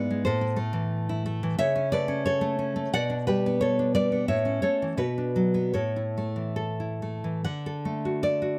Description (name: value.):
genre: romantic piece for solo classical guitar.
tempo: 62-93 BPM.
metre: 2/4.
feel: rubato.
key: unclear.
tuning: A4 = 439 Hz.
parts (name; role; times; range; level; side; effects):
nylon-string guitar; solo; 0.0-8.6 s; G#2 to F#5; -27 LUFS; equal; none.
room: light reverb.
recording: close, detailed microphones.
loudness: -27 LUFS.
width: mono.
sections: 0.0-7.5 A section; 7.5-8.6 B section.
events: none.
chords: 0.3 A5; 1.6 A/C#; 2.9 G/B; 4.3 A; 5.0 Bm; 5.8 A; 7.5 D.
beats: | 0.26 0.92 | 1.58 2.23 | 2.91 3.59 | 4.27 4.97 | 5.75 6.58 | 7.47 8.26.